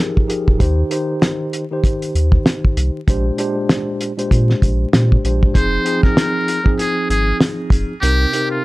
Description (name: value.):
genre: hip hop, boom-bap hip-hop.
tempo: 97 BPM.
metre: 4/4.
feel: swing 58% on 16ths.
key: F dorian.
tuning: A4 = 439 Hz.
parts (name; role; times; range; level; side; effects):
mellow tine electric piano; accompaniment; 0.0-8.6 s; Bb2 to C5; -21 LUFS; equal; medium stereo tremolo, cassette tape, high-pass filter, low-pass filter.
cloth-damped thuddy drum kit; drums; 0.2-8.5 s; hi-hat, kick drum, snare drum; -15 LUFS; equal; none.
warm sub bass; bass; 0.5-8.3 s; D1 to Bb2; -16 LUFS; equal; none.
trumpet with metal mute; melody; 5.6-8.6 s; F4 to C5; -20 LUFS; equal; high-pass filter, low-pass filter.
room: little or no reverb.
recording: dry, gritty hardware recording, vinyl crackle.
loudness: -14 LUFS.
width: side -20 dB against mid.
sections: 0.0-5.5 A section; 5.5-8.6 B section.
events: none.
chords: 0.0 Fm11; 0.6 Eb6; 3.1 Bb13; 5.5 Fm7; 8.0 Cm7.